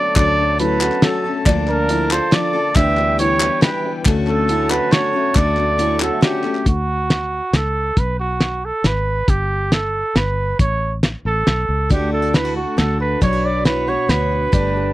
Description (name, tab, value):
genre	indie folk with a building arrangement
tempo	138 BPM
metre	3/4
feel	straight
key	D major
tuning	A4 = 440 Hz
part	mellow trumpet	melody	0.0-14.9 s	F#4 to E5	-20 LUFS	right 2 dB	none
part	felt-muted upright piano	accompaniment	0.0-6.7 s	D2 to F#5	-26 LUFS	left 5 dB	none
part	picked steel-string acoustic guitar	accompaniment	0.0-6.7, 11.9-14.9 s	B2 to C#5	-25 LUFS	left 6 dB	none
part	mellow brass ensemble	sustained chords	0.0-6.6, 11.9-14.9 s	Bb3 to B5	-30 LUFS	left 2 dB	none
part	fingered electric bass	bass	0.2-14.9 s	G1 to D2	-22 LUFS	equal	none
part	cloth-damped thuddy drum kit	drums	0.2-14.6 s	hi-hat, kick drum, snare drum	-16 LUFS	equal	none
part	group handclap	percussion	0.2-6.6 s	none	-25 LUFS	left 3 dB	none
part	dark upright piano	arpeggios	0.6-6.4, 11.9-14.9 s	D4 to F#4	-25 LUFS	right 4 dB	none
part	fingerpicked steel-string acoustic guitar	accompaniment	11.9-14.9 s	B2 to C#5	-27 LUFS	left 1 dB	none
room	little or no reverb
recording	dry, close 1970s-style studio recording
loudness	-15 LUFS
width	side -16 dB against mid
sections	0.0-6.7 A section; 6.7-14.9 B section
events	felt piano fill 5.8-6.7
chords	0.0 Dmaj7; 1.5 Bbmaj7/D; 2.8 G6/D; 4.1 Dmaj7; 6.7 D; 8.0 B5; 9.3 Gadd9; 10.6 Aadd9; 11.9 D; 13.2 Bmadd9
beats	| 0.16 0.59 1.03 | 1.46 1.89 2.32 | 2.76 3.19 3.62 | 4.06 4.49 4.92 | 5.36 5.79 6.23 | 6.66 7.10 7.53 | 7.97 8.41 8.85 | 9.28 9.72 10.16 | 10.60 11.03 11.47 | 11.91 12.35 12.78 | 13.22 13.66 14.10 | 14.53